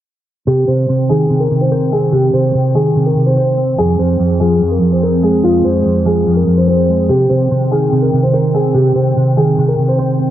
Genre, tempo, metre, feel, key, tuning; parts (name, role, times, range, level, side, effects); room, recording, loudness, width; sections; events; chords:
hip hop; 145 BPM; 4/4; half-time; C minor; A4 = 440 Hz
dark concert grand piano; melody; 0.5-10.3 s; F4 to C5; -15 LUFS; left 1 dB; low-pass filter
electric guitar with an envelope filter; accompaniment; 0.5-10.3 s; F2 to C5; -13 LUFS; equal; analog chorus, low-pass filter
airy breathy pad; sustained chords; 0.5-10.3 s; Eb3 to G5; -20 LUFS; right 2 dB; chorus
moderate lush hall reverb, RT60 2.4 s; dark, warm production, low-pass filter; -11 LUFS; side -12 dB against mid
0.5-10.3 A section
filter sweep 0.5-10.3
0.5 Cm; 3.8 Fm; 7.1 Cm